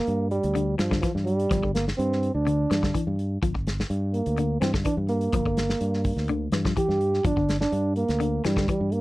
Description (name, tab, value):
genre	afrobeat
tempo	126 BPM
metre	4/4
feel	straight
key	G dorian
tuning	A4 = 440 Hz
part	trombone with bucket mute	melody	0.0-9.0 s	F3 to G4	-26 LUFS	right 2 dB	none
part	fingered electric bass	bass	0.1-9.0 s	G1 to G2	-27 LUFS	equal	none
part	warm soul drum kit	drums	0.1-9.0 s	hi-hat, kick drum, snare drum	-28 LUFS	equal	none
part	electric guitar at the edge of break-up	arpeggios	0.6-8.9 s	D3 to F3	-29 LUFS	left 5 dB	phaser
room	little or no reverb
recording	dry, close 1970s-style studio recording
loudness	-22 LUFS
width	side -18 dB against mid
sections	0.0-9.0 A section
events	none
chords	0.0 Gm